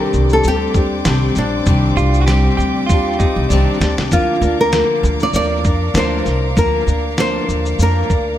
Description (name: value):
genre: acoustic pop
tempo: 98 BPM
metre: 4/4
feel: swing 55% on 16ths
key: Bb major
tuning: A4 = 440 Hz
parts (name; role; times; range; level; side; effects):
- nylon-string guitar; melody; 0.0-8.4 s; D4 to D5; -19 LUFS; equal; analog delay
- fingerpicked steel-string acoustic guitar; accompaniment; 0.0-8.4 s; C3 to Bb4; -20 LUFS; left 3 dB; analog delay
- rich studio string section; sustained chords; 0.0-8.4 s; Bb4 to D6; -27 LUFS; equal; none
- upright bass; bass; 0.1-8.4 s; Bb1 to F2; -18 LUFS; equal; none
- dusty soul sampler-style drum kit; drums; 0.1-8.3 s; kick drum, shaker, snare drum; -19 LUFS; equal; none
- direct-recorded clean electric guitar; second line; 2.0-3.9 s; D4 to G4; -22 LUFS; right 5 dB; analog delay
room: light reverb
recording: echo-heavy mix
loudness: -13 LUFS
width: side -12 dB against mid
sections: 0.0-8.4 A section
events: drum fill 3.5-4.1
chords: 0.0 Cmadd9; 4.1 Bb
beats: 0.45 1.06 | 1.67 2.28 2.90 3.51 | 4.12 4.73 5.34 5.96 | 6.57 7.18 7.79